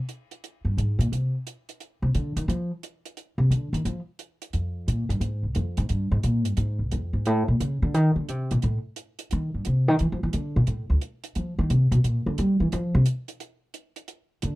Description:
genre	jazz piano trio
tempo	176 BPM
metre	4/4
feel	swing 65% on 8ths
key	unclear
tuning	A4 = 440 Hz
part	hi-hat	drums	0.1-14.5 s	none	-40 LUFS	right 6 dB	none
part	upright bass	bass	0.6-14.6 s	C2 to G3	-22 LUFS	equal	none
room	little or no reverb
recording	dry, close 1970s-style studio recording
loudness	-23 LUFS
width	side -19 dB against mid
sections	0.0-14.6 A section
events	upright bass solo 0.0-14.6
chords	none

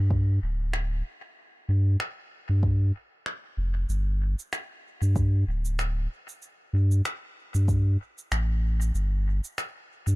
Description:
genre	ambient dub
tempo	95 BPM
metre	4/4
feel	swing 57% on 16ths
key	unclear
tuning	A4 = 440 Hz
part	warm sub bass	bass	0.0-10.2 s	D1 to G2	-23 LUFS	equal	none
part	electronic kick drum	drums	0.1-7.8 s	none	-29 LUFS	equal	none
part	electronic finger snaps and shaker	drums	0.7-10.2 s	none	-36 LUFS	equal	dub echo
room	little or no reverb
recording	dark, warm production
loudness	-24 LUFS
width	side -21 dB against mid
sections	0.0-10.2 A section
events	none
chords	none

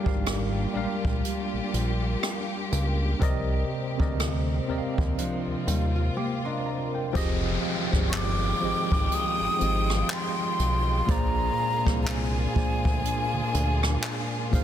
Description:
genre	contemporary R&B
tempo	61 BPM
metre	4/4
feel	swing 58% on 16ths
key	F dorian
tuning	A4 = 440 Hz
part	tine electric piano	accompaniment	0.0-14.6 s	Bb2 to D6	-30 LUFS	right 1 dB	overdrive, medium stereo tremolo
part	warm studio string section	sustained chords	0.0-14.6 s	C3 to G5	-34 LUFS	left 2 dB	none
part	fat analog bass	bass	0.1-14.6 s	F1 to Eb2	-28 LUFS	equal	none
part	jazz brush drum kit	drums	0.1-14.6 s	handclaps, hi-hat, kick drum, rim click	-28 LUFS	equal	soft clipping on snare
part	nylon-string guitar	arpeggios	5.2-7.1 s	F3 to Bb4	-33 LUFS	left 1 dB	tape echo
part	downlifter	sound effects	7.2-14.6 s	none	-36 LUFS	left 1 dB	none
part	breathy hollow jazz flute	melody	8.1-14.5 s	Ab5 to Eb6	-29 LUFS	equal	tape echo
room	light reverb, studio reverb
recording	dense, heavily limited modern master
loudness	-24 LUFS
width	side -10 dB against mid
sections	0.0-7.2 A section; 7.2-14.6 B section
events	break 6.2-7.2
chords	0.0 Gm7; 3.2 Cm7; 7.2 Fm9; 11.1 Bb7

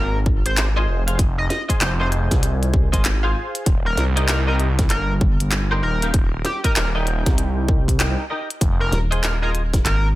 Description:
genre	glitch hop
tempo	97 BPM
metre	4/4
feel	swing 63% on 16ths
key	F minor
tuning	A4 = 440 Hz
part	sync lead	melody	0.0-10.1 s	G4 to Eb5	-27 LUFS	equal	chorus, cassette tape, digital delay
part	phased detuned saw bass	bass	0.0-8.9 s	Eb1 to C2	-20 LUFS	equal	phaser, tube saturation
part	electronic kick drum	drums	0.3-9.8 s	none	-19 LUFS	equal	none
part	glitchy drum kit	drums	0.5-10.0 s	handclaps, hi-hat, snare drum	-25 LUFS	equal	none
part	semi-hollow electric guitar	stabs	0.8-9.6 s	Eb4 to G5	-27 LUFS	equal	ensemble chorus, sidechain pumping, digital delay
part	rubbery square bass	bass	8.9-10.2 s	Eb1 to Ab1	-20 LUFS	equal	none
room	digital ambience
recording	none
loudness	-17 LUFS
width	side -17 dB against mid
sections	0.0-10.2 A section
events	none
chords	0.0 Fm7; 3.7 Eb; 8.6 Fm7

